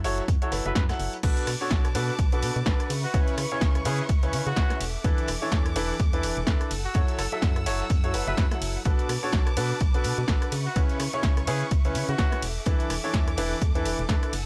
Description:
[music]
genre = piano house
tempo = 126 BPM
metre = 4/4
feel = swing 57% on 16ths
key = unclear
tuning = A4 = 440 Hz
[part]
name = clear baby grand piano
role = riff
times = 0.0-14.3 s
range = B2 to F#5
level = -33 LUFS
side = equal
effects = sidechain pumping
[part]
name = organ-like FM bass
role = bass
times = 0.0-14.5 s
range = E1 to C#3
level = -32 LUFS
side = equal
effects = sidechain pumping
[part]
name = crunchy breakbeat drum kit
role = drums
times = 0.0-14.5 s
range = hi-hat, snare drum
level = -46 LUFS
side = equal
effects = none
[part]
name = punchy analog drum machine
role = drums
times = 0.0-14.4 s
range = crash cymbal, hi-hat, ride cymbal, rim click, snare drum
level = -36 LUFS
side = equal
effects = overdrive
[part]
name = electronic kick drum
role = drums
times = 0.3-14.2 s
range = none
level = -27 LUFS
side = equal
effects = overdrive
[part]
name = mellow trumpet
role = melody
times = 0.7-12.5 s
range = F#4 to B4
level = -38 LUFS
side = equal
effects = analog delay
[part]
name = warm studio violin section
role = sustained chords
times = 1.2-14.5 s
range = A4 to E6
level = -39 LUFS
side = equal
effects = sidechain pumping
[sound]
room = little or no reverb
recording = dry, gritty hardware recording, cassette tape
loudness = -26 LUFS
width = mono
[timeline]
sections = 0.0-14.5 A section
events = none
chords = 0.0 F#m7; 1.2 Bm7; 2.9 C#m7; 4.8 E7sus4; 6.7 F#m7; 8.9 Bm7; 10.5 C#m7; 12.4 E7sus4

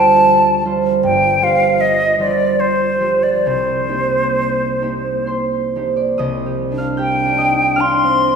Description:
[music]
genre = classical, impressionist duo for flute and harp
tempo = 60-79 BPM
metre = 3/4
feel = rubato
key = C dorian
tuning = A4 = 440 Hz
[part]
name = bright silver concert flute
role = melody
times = 0.0-8.4 s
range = C5 to C6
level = -15 LUFS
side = left 1 dB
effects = none
[part]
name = concert harp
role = accompaniment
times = 0.0-8.4 s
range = G1 to G6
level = -17 LUFS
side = right 3 dB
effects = none
[sound]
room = wet scoring stage reverb, RT60 1.5 s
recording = heard from further back in the room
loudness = -14 LUFS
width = side -6 dB against mid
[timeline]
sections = 0.0-6.2 A section; 6.2-8.4 A section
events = none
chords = 0.0 Fadd9/D; 1.0 G7sus4; 3.4 Cm7; 6.2 Cm9

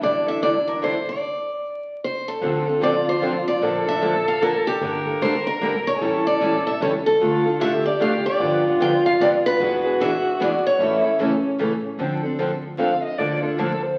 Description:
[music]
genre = acoustic string swing (jazz manouche)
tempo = 150 BPM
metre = 3/4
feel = swing 62% on 8ths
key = D minor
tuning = A4 = 441 Hz
[part]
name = picked steel-string acoustic guitar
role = melody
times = 0.0-11.8 s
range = G4 to G5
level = -24 LUFS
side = equal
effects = none
[part]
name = dark violin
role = second line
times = 0.0-14.0 s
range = C#4 to F5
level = -26 LUFS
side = equal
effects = none
[part]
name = picked steel-string acoustic guitar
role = accompaniment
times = 0.0-13.7 s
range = C#3 to A4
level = -28 LUFS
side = equal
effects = none
[part]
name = picked steel-string acoustic guitar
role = accompaniment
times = 0.0-13.7 s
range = D3 to B4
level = -32 LUFS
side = equal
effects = none
[part]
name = upright bass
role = bass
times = 0.0-14.0 s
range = E1 to D2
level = -37 LUFS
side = equal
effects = none
[sound]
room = wet large studio reverb, RT60 1.2 s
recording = very old 78 rpm record, vinyl crackle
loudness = -21 LUFS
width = mono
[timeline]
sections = 0.0-2.4 A section; 2.4-12.0 B section; 12.0-14.0 C section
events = stop 1.2-2.4; violin solo 12.0-14.0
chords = 0.0 A7sus4; 1.2 N.C.; 2.4 Dm7; 3.6 Bbmaj7; 4.8 Gmadd9; 6.0 A7; 7.2 Dm; 8.4 G7; 9.6 E7; 10.8 A; 12.0 Dm7; 13.2 Bbmaj7/D

